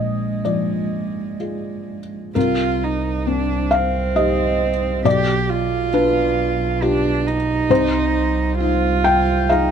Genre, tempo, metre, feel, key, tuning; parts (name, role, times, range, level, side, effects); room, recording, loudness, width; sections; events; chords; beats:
neoclassical piano and strings; 62-69 BPM; 3/4; rubato; C minor; A4 = 439 Hz
warm cello; second line; 0.0-9.7 s; Ab3 to G4; -22 LUFS; right 7 dB
felt-muted upright piano; accompaniment; 0.0-9.7 s; Bb1 to G5; -20 LUFS; left 3 dB
warm double bass; bass; 2.4-9.7 s; B1 to C2; -23 LUFS; right 1 dB
light reverb; close, detailed microphones; -17 LUFS; side -8 dB against mid
0.0-2.4 A section; 2.4-9.7 A section
0.0 Bb7; 2.4 Cm7; 5.0 G7/B; 7.7 Ab6/C (rootless)
0.45 1.40 | 2.35 3.27 4.16 | 5.05 5.93 6.82 | 7.70 8.59 9.49